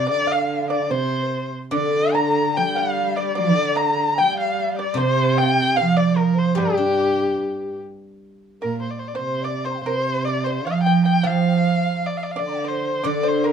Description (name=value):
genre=chinese traditional, Chinese chamber ensemble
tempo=74 BPM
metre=2/4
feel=rubato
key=G yu mode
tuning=A4 = 440 Hz
part: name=warm erhu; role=melody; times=0.0-13.5 s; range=G4 to Bb5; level=-23 LUFS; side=left 2 dB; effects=none
part: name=dark cello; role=second line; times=0.0-13.5 s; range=G2 to G3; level=-22 LUFS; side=right 5 dB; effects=none
part: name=mellow hollow xiao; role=second line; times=0.0-13.5 s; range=G4 to C6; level=-27 LUFS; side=left 6 dB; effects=none
part: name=pipa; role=second line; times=0.0-13.5 s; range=G4 to Bb5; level=-28 LUFS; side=right 5 dB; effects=none
part: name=guzheng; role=accompaniment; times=1.7-13.5 s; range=C3 to D4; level=-26 LUFS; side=left 2 dB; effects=none
room=wet booth ambience, RT60 0.2 s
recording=small room ambience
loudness=-18 LUFS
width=side -7 dB against mid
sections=0.0-8.2 A section; 8.2-13.5 B section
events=none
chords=none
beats=| 0.09 0.91 | 1.73 2.55 | 3.36 4.16 | 4.96 5.76 | 6.57 7.39 | 8.21 9.04 | 9.85 10.65 | 11.45 12.25 | 13.05